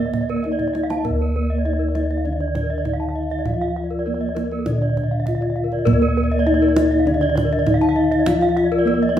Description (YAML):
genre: Balinese gamelan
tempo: 100 BPM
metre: 4/4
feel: straight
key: unclear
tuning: A4 = 440 Hz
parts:
  - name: gamelan-type bronze metallophone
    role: melody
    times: 0.0-9.2 s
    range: Bb3 to F4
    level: -21 LUFS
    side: left 1 dB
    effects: none
  - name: gamelan-type bronze metallophone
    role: accompaniment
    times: 0.0-9.2 s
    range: D3 to Bb3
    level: -29 LUFS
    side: equal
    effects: none
  - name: gamelan-type bronze metallophone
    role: arpeggios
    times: 0.0-9.2 s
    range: Bb4 to A5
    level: -26 LUFS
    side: right 6 dB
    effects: none
  - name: gamelan-type bossed gongs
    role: bass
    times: 0.0-9.2 s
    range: D2 to Bb4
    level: -24 LUFS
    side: equal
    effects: none
  - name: gamelan-type bronze metallophone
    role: arpeggios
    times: 0.1-9.2 s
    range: A4 to A5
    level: -26 LUFS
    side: left 3 dB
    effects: none
  - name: kendang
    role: percussion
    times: 0.1-9.2 s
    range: none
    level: -25 LUFS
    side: right 2 dB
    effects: none
room: wet large studio reverb, RT60 0.9 s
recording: band playing live in one room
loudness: -17 LUFS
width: side -10 dB against mid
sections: 0.0-1.1 A section; 1.1-9.2 B section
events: drum fill 0.6-1.1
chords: none